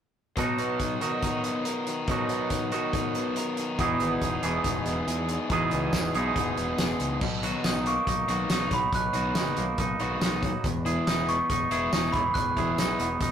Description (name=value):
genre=indie rock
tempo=140 BPM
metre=4/4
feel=straight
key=B major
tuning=A4 = 440 Hz
part: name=overdriven electric guitar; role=riff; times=0.4-13.1 s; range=B2 to A#4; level=-32 LUFS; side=left 4 dB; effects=none
part: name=twangy electric guitar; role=riff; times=0.4-13.3 s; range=E2 to G#4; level=-29 LUFS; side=right 3 dB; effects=none
part: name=loose indie drum kit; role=drums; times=0.4-13.3 s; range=crash cymbal, hi-hat, kick drum, snare drum, tambourine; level=-31 LUFS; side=left 1 dB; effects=none
part: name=growling fingered electric bass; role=bass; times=3.8-13.3 s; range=E1 to E2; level=-33 LUFS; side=equal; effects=overdrive
part: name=glockenspiel with brass mallets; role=melody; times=7.7-13.2 s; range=B5 to F#6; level=-29 LUFS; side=right 2 dB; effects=none
room=light reverb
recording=rough rehearsal-room recording, tube saturation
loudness=-24 LUFS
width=side -8 dB against mid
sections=0.4-7.2 A section; 7.2-13.3 B section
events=none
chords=0.4 Bmaj7; 3.8 Emaj7; 7.2 Bmaj7; 10.6 Emaj7